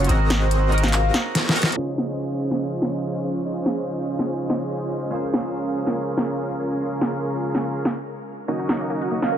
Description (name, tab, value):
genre	future bass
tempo	143 BPM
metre	4/4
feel	swing 54% on 16ths, half-time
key	Db major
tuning	A4 = 440 Hz
part	twangy electric guitar	accompaniment	0.0-8.5 s	Db3 to C5	-31 LUFS	right 2 dB	analog chorus, ping-pong delay
part	dense compressed supersaw	riff	0.0-9.4 s	C4 to Ab5	-26 LUFS	right 1 dB	cassette tape, low-pass filter, ping-pong delay
part	long sustained 808-style bass	bass	0.0-1.1 s	Ab1	-20 LUFS	equal	none
part	pop drum kit	drums	0.0-9.3 s	handclaps, hi-hat, snare drum	-23 LUFS	equal	overdrive, low-pass filter on snare, low-pass filter on hats, low-pass filter on room
part	breathy flute-like synth lead	melody	0.4-1.1, 9.2-9.3 s	C5 to F5	-29 LUFS	right 1 dB	wide subtle chorus, dub echo
part	dark chamber string section	sustained chords	1.8-9.4 s	Db3 to Db5	-33 LUFS	left 1 dB	none
part	wide unison pluck	arpeggios	8.5-9.4 s	Bb3 to Bb4	-29 LUFS	right 2 dB	cassette tape, ping-pong delay
room	light reverb, digital ambience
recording	low-pass filter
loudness	-21 LUFS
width	side -9 dB against mid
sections	0.0-1.8 A section; 1.8-9.4 B section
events	drop 0.0-1.8; drum fill 1.4-1.8; band accent 1.6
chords	0.1 Ab9; 1.8 Dbmaj9; 5.1 Bbm7/Db; 8.5 Ebm7